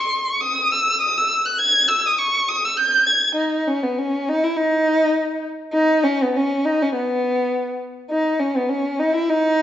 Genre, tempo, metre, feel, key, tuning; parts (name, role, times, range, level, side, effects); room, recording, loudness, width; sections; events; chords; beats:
balkan folk; 102 BPM; 2/4; swing 55% on 16ths; A4 = 443 Hz
dark violin; solo; 0.0-9.6 s; Cb4 to G#6; -17 LUFS; equal
moderate recital hall reverb, RT60 1.4 s; recorded in a church or concert hall, nothing above 7.6 kHz; -17 LUFS; side -11 dB against mid
0.0-3.4 A section; 3.4-9.6 B section
0.42 | 1.01 1.60 | 2.19 2.78 | 3.37 3.96 | 4.55 5.14 | 5.73 6.32 | 6.92 7.51 | 8.10 8.69 | 9.28